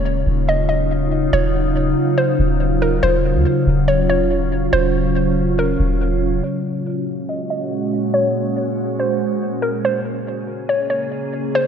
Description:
hip hop, atmospheric cloud-rap; 141 BPM; 4/4; half-time; A4 = 440 Hz
hollow square pluck; melody; 0.0-11.7 s; Bb4 to Eb5; -22 LUFS; equal; chorus, low-pass filter, tape echo
glassy FM pad; sustained chords; 0.0-11.7 s; Bb2 to Ab4; -19 LUFS; equal; ensemble chorus, built-in reverb, low-pass filter
soft 808-style bass; bass; 0.0-6.4 s; Eb1 to Eb2; -20 LUFS; equal
light reverb, digital ambience; -16 LUFS; side -8 dB against mid
0.0-6.4 A section; 6.4-11.7 B section
filter sweep 6.4-11.7
0.0 Ebm9; 6.4 Ab9sus4; 9.8 Bbm9
0.05 0.48 0.90 | 1.33 1.75 2.18 2.61 | 3.03 3.46 3.88 4.31 | 4.73 5.16 5.58 6.01 | 6.44 6.86 7.29 7.71 | 8.14 8.56 8.99 9.41 | 9.84 10.27 10.69 11.12 | 11.54

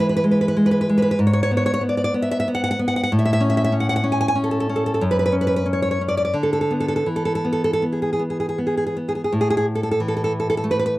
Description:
romantic piece for solo classical guitar; 80-97 BPM; 3/4; rubato; A major; A4 = 440 Hz
nylon-string guitar; solo; 0.0-11.0 s; F#2 to G#5; -18 LUFS; equal
small room ambience; dry, close 1970s-style studio recording; -18 LUFS; side -18 dB against mid
0.0-9.3 A section; 9.3-11.0 B section
0.0 E; 1.2 G#m7; 3.1 A; 5.0 F#5; 6.4 Bm/D; 7.1 E5; 9.3 A5
0.54 | 1.18 1.82 2.46 | 3.10 3.74 4.38 | 5.02 5.68 6.38 | 7.10 7.84 8.59 | 9.30 9.99 10.63

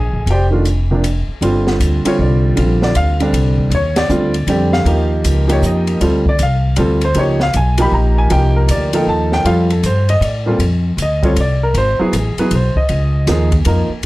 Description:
jazz piano trio; 157 BPM; 3/4; swing 65% on 8ths; A4 = 440 Hz
warm concert grand piano; melody; 0.0-13.9 s; Bb2 to Cb6; -16 LUFS; right 1 dB
upright bass; bass; 0.0-14.1 s; F1 to A2; -15 LUFS; equal
open jazz drum kit; drums; 0.3-14.1 s; hi-hat, kick drum, ride cymbal, snare drum; -23 LUFS; equal
little or no reverb; dry, gritty hardware recording; -12 LUFS; side -18 dB against mid
0.0-1.4 A section; 1.4-10.6 B section; 10.6-14.1 C section
band accent 3.9; grand piano solo 10.6-14.1
0.0 Bb (rootless); 1.4 G5; 2.6 Bbadd9; 3.7 Ebmaj9; 4.9 Eb9; 6.0 Dm7; 7.2 Db7#11; 8.3 Cm9; 9.5 Fadd9; 10.6 Csus4; 11.7 Ab7#9; 12.9 Db
| 0.28 0.66 1.04 | 1.42 1.81 2.19 | 2.57 2.95 3.34 | 3.72 4.10 4.48 | 4.87 5.25 5.63 | 6.01 6.39 6.78 | 7.16 7.54 7.92 | 8.31 8.69 9.07 | 9.45 9.84 10.22 | 10.60 10.98 11.37 | 11.75 12.13 12.51 | 12.89 13.28 13.66 | 14.04

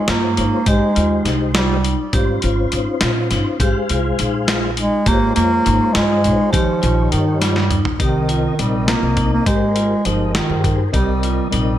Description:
progressive instrumental, band music in an uneven meter; 205 BPM (eighths); 5/8; straight; Ab major; A4 = 436 Hz
warm bass clarinet; melody; 0.0-2.0, 4.8-11.8 s; Eb3 to Bb3; -18 LUFS; right 2 dB; digital delay
mellow tonewheel organ; accompaniment; 0.0-11.8 s; C3 to F5; -23 LUFS; left 3 dB; chorus vibrato, fast rotary speaker
vibraphone with hard mallets; arpeggios; 0.1-11.7 s; Eb4 to G4; -24 LUFS; right 1 dB
upright bass; bass; 0.1-11.8 s; G1 to Bb2; -21 LUFS; equal
boom bap sampler-style drum kit; drums; 0.1-11.7 s; hi-hat, kick drum, snare drum, toms; -20 LUFS; equal; gated reverb
moderate plate reverb, RT60 2.0 s; bright 1980s-style digital production; -15 LUFS; side -12 dB against mid
0.0-8.0 A section; 8.0-11.8 B section
drum fill 7.4-8.0
0.0 Bbm7; 0.7 Abmaj7; 2.1 Dbmaj7/Ab; 3.6 Fm/Ab; 5.1 Bbm7/Ab; 6.5 Eb7; 8.0 Cm7; 9.5 Abmaj9; 10.9 Cm7
0.08 0.38 | 0.67 0.96 1.25 1.55 1.84 | 2.13 2.43 2.72 3.01 3.31 | 3.60 3.89 4.18 4.48 4.77 | 5.06 5.36 5.65 5.94 6.24 | 6.53 6.82 7.12 7.41 7.70 | 8.00 8.29 8.58 8.88 9.17 | 9.46 9.76 10.05 10.34 10.64 | 10.93 11.22 11.52

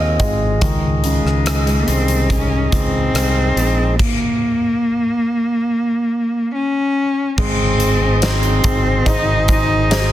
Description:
pop ballad; 71 BPM; 4/4; straight; Ab major; A4 = 440 Hz
warm baby grand piano; accompaniment; 0.0-10.1 s; C3 to Ab5; -23 LUFS; equal
tonewheel organ; sustained chords; 0.0-10.1 s; Ab3 to C6; -23 LUFS; right 2 dB; stopped rotary speaker
modern bright fingered electric bass; bass; 0.0-10.1 s; Ab1 to Eb2; -18 LUFS; equal
huge arena drum kit; drums; 0.2-10.1 s; crash cymbal, hi-hat, kick drum, rim click, snare drum; -20 LUFS; equal; soft clipping on snare
warm cello; melody; 1.0-10.1 s; Ab3 to Eb4; -18 LUFS; left 1 dB
studio reverb; dense, heavily limited modern master; -14 LUFS; side -13 dB against mid
0.0-7.4 A section; 7.4-10.1 B section
grand piano fill 0.0-0.6; stop 4.0-7.4
0.0 Fm7; 0.6 Dbsus2; 4.0 N.C.; 7.4 Ab
| 0.62 1.46 2.31 3.15 | 4.00 4.84 5.69 6.53 | 7.38 8.22 9.07 9.91

